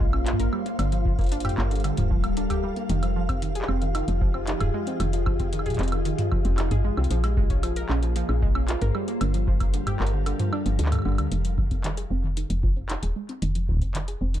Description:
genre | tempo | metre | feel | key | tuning
IDM | 114 BPM | 4/4 | straight | F dorian | A4 = 439 Hz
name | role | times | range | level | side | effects
glassy FM pad | sustained chords | 0.0-11.3 s | F3 to F5 | -31 LUFS | left 3 dB | ensemble chorus, built-in reverb
warbly dusty pluck | arpeggios | 0.0-14.4 s | D3 to Bb4 | -32 LUFS | right 4 dB | chorus, vintage 12-bit sampler grit, tape echo
woody FM bass | bass | 0.0-14.4 s | D1 to D2 | -26 LUFS | equal | tube saturation
electronic kick drum | drums | 0.0-13.9 s | none | -25 LUFS | equal | small room ambience
flickering grainy texture | texture | 0.0-11.3 s | F5 | -40 LUFS | right 1 dB | built-in reverb
booming analog drum machine | drums | 0.1-14.4 s | handclaps, hi-hat, toms, woodblock | -31 LUFS | equal | small room ambience
room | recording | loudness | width
little or no reverb | dark, warm production | -22 LUFS | side -12 dB against mid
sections
0.0-11.3 A section; 11.3-14.4 B section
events
kick drops out 10.3-11.3; filter sweep on synth pluck 11.3-14.4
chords
0.0 Bbm7; 0.5 Gm7; 2.9 Fm7; 7.1 Bbm7; 8.9 Gm7; 11.3 Fm7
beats
0.27 | 0.79 1.32 1.84 2.37 | 2.90 3.42 3.95 4.47 | 5.00 5.53 6.05 6.58 | 7.11 7.63 8.16 8.69 | 9.21 9.74 10.27 10.79 | 11.32 11.84 12.37 12.90 | 13.42 13.95

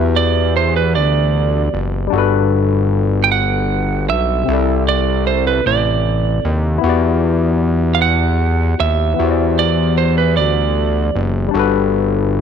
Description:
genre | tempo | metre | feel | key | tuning
slow six-eight R&B | 51 BPM (dotted quarters) | 6/8 | straight | E minor | A4 = 441 Hz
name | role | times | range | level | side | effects
lightly driven lead guitar | melody | 0.0-11.2 s | B4 to G5 | -18 LUFS | right 12 dB | slapback echo
barky tine electric piano | accompaniment | 0.0-12.4 s | C3 to D5 | -19 LUFS | left 12 dB | overdrive
fat analog bass | bass | 0.0-12.4 s | F#1 to E2 | -16 LUFS | equal | none
room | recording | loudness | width
light reverb, digital ambience | 1960s-style stereo with parts hard left and right | -13 LUFS | side -7 dB against mid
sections
0.0-12.4 A section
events
none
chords
0.0 Em7; 2.1 Gmaj9; 4.5 C69; 6.8 Em7; 11.5 Gmaj9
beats
0.94 | 2.11 3.29 | 4.47 5.64 | 6.82 8.00 | 9.17 10.35 | 11.53

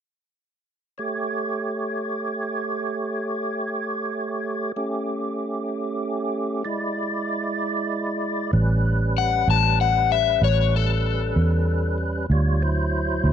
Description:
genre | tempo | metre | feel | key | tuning
slow blues | 64 BPM (dotted quarters) | 12/8 | straight | A mixolydian | A4 = 441 Hz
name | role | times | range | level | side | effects
tonewheel organ | sustained chords | 1.0-13.3 s | F#3 to D5 | -26 LUFS | right 2 dB | slow rotary speaker, overdrive, chorus vibrato
vintage muted fingered electric bass | bass | 8.5-13.3 s | A1 to E2 | -21 LUFS | right 1 dB | none
overdriven semi-hollow guitar | melody | 9.2-12.0 s | A4 to A5 | -21 LUFS | left 13 dB | phaser
room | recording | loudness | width
digital ambience | none | -21 LUFS | side -9 dB against mid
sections
1.0-8.5 A section; 8.5-13.3 B section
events
none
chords
1.0 A7; 6.7 E7; 8.5 A9; 12.3 D9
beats
| 1.00 1.94 2.88 3.83 | 4.77 5.71 6.65 7.59 | 8.53 9.48 10.42 11.36 | 12.30 13.24

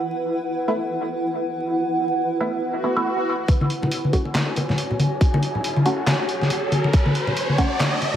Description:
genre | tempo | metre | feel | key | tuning
deep dubstep | 139 BPM | 4/4 | swing 60% on 16ths, half-time | F# minor | A4 = 445 Hz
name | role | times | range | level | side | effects
granular cloud pad | sustained chords | 0.0-8.2 s | E4 to A5 | -25 LUFS | right 1 dB | built-in reverb
filtered dub chord stab | stabs | 0.0-8.2 s | A3 to F#4 | -27 LUFS | equal | phaser, lush chorus, dub echo
swell and riser | sound effects | 2.8-8.2 s | none | -27 LUFS | equal | none
electronic kick drum | drums | 3.5-7.7 s | none | -18 LUFS | equal | none
trip hop sampler-style drum kit | drums | 3.5-8.1 s | handclaps, hi-hat, snare drum | -27 LUFS | equal | high-pass filter on hats, low-pass filter on hats, high-pass filter on snare, low-pass filter on snare, high-pass filter on room, low-pass filter on room
congas | percussion | 3.5-8.2 s | none | -22 LUFS | left 1 dB | none
room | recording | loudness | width
moderate echo chamber reverb, RT60 1.7 s, digital ambience | vinyl crackle | -19 LUFS | side -10 dB against mid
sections
0.0-3.5 A section; 3.5-8.2 B section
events
swell 2.8-3.5; build-up 3.5-8.2; riser 3.5-8.2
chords
0.0 Esus4; 3.5 F#m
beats
| 0.03 0.46 0.89 1.32 | 1.76 2.19 2.62 3.05 | 3.48 3.92 4.35 4.78 | 5.21 5.64 6.07 6.50 | 6.94 7.37 7.80

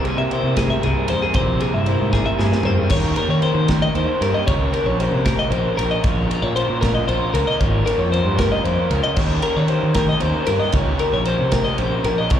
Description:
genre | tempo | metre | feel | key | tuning
math rock and midwest emo | 77 BPM (dotted quarters) | 6/8 | straight | unclear | A4 = 440 Hz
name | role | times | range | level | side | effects
twelve-string electric guitar | accompaniment | 0.0-4.5 s | G2 to E4 | -26 LUFS | right 5 dB | slapback echo
twelve-string electric guitar | arpeggios | 0.0-12.4 s | Ab4 to E5 | -22 LUFS | left 3 dB | slapback echo
raw garage guitar | riff | 0.0-12.4 s | Bb2 to Bb4 | -24 LUFS | equal | overdrive, slapback echo
modern studio drum kit | drums | 0.0-12.4 s | crash cymbal, kick drum, ride cymbal, snare drum, toms | -24 LUFS | right 1 dB | none
fuzz fingered electric bass | bass | 0.2-12.4 s | Ab1 to Eb3 | -21 LUFS | equal | overdrive
room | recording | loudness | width
little or no reverb | live gig heard through the venue's PA, club reverb | -16 LUFS | side -10 dB against mid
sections
0.0-2.9 A section; 2.9-12.4 B section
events
drum fill 2.1-2.9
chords
0.0 C7b13; 2.9 Eb7; 6.0 Bbmadd9; 9.2 Eb7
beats
0.57 | 1.35 2.13 | 2.91 3.70 | 4.48 5.26 | 6.04 6.83 | 7.61 8.39 | 9.17 9.96 | 10.74 11.52 | 12.31

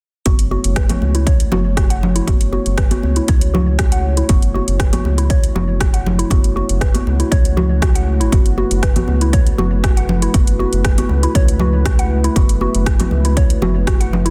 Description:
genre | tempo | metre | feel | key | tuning
afro house | 119 BPM | 4/4 | straight | F# minor | A4 = 440 Hz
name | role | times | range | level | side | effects
dark analog pad | sustained chords | 0.3-14.3 s | A3 to C#5 | -27 LUFS | equal | chorus, sidechain pumping
mallet-like synth pluck | arpeggios | 0.3-14.3 s | E4 to F#5 | -27 LUFS | equal | chorus, phaser, sidechain pumping, digital delay
round analog bass | bass | 0.3-14.3 s | F#1 to C#2 | -20 LUFS | equal | sidechain pumping
electronic kick drum | drums | 0.3-14.0 s | none | -17 LUFS | equal | studio reverb
house drum kit | drums | 0.3-14.3 s | hi-hat, rim click | -27 LUFS | equal | studio reverb, soft clipping on snare
congas | percussion | 0.3-14.2 s | none | -25 LUFS | equal | none
room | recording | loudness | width
digital ambience | dense, heavily limited modern master | -15 LUFS | mono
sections
0.3-14.3 A section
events
filter sweep on synth pluck 0.3-14.3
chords
0.3 F#m7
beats
| 0.26 0.76 1.27 1.77 | 2.28 2.78 3.28 3.79 | 4.29 4.80 5.30 5.80 | 6.31 6.81 7.32 7.82 | 8.33 8.83 9.34 9.84 | 10.34 10.85 11.35 11.86 | 12.36 12.86 13.37 13.87

